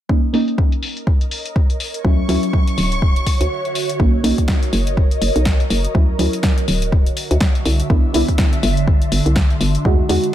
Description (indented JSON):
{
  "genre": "deep house",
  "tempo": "123 BPM",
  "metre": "4/4",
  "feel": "swing 58% on 16ths",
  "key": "unclear",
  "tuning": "A4 = 440 Hz",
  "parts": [
    { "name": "deep mellow chord stab", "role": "stabs", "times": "0.1-10.3 s", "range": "F#3 to F#4", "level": "-21 LUFS", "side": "right 1 dB", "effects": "lush chorus, tape echo" },
    { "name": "electronic kick drum", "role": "drums", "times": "0.1-10.0 s", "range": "none", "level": "-16 LUFS", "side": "equal", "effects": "overdrive" },
    { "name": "deep house drum kit", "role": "drums", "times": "0.3-10.3 s", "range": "hi-hat, snare drum", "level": "-24 LUFS", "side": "left 1 dB", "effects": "overdrive, low-pass filter on hats, low-pass filter on snare, low-pass filter on room" },
    { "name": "ethereal airy pad", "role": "texture", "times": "1.0-10.3 s", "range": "D3 to C6", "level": "-24 LUFS", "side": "right 1 dB", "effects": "ensemble chorus, built-in reverb, phaser, sidechain pumping" },
    { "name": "hollow knocking FM bass", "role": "bass", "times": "2.0-10.2 s", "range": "D1 to E2", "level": "-19 LUFS", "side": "equal", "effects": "sidechain pumping" },
    { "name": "warm studio violin section", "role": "texture", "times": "2.0-4.0 s", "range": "C#6", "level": "-27 LUFS", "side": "equal", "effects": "none" }
  ],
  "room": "light reverb, digital ambience",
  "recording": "none",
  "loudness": "-14 LUFS",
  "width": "side -12 dB against mid",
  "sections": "0.1-4.0 A section; 4.0-10.3 B section",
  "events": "break 3.5-4.0; filter sweep on synth stab 4.0-10.3",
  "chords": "0.1 A#madd11; 2.0 Dmaj9; 3.8 A#madd11; 4.0 Bmaj9; 5.9 Dmaj9; 7.7 Cmaj9"
}